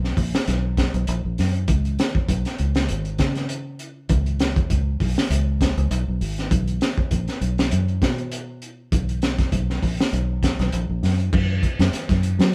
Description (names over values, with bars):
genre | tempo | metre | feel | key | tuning
afrobeat | 100 BPM | 4/4 | swing 55% on 16ths | unclear | A4 = 440 Hz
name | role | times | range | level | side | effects
fingered electric bass | bass | 0.0-12.5 s | G#1 to F#3 | -24 LUFS | equal | none
crunchy breakbeat drum kit | drums | 0.0-12.5 s | crash cymbal, hi-hat, kick drum, snare drum | -25 LUFS | equal | none
room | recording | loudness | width
moderate studio reverb, RT60 0.6 s | band playing live in one room | -22 LUFS | mono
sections
0.0-11.3 A section; 11.3-12.5 B section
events
none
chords
none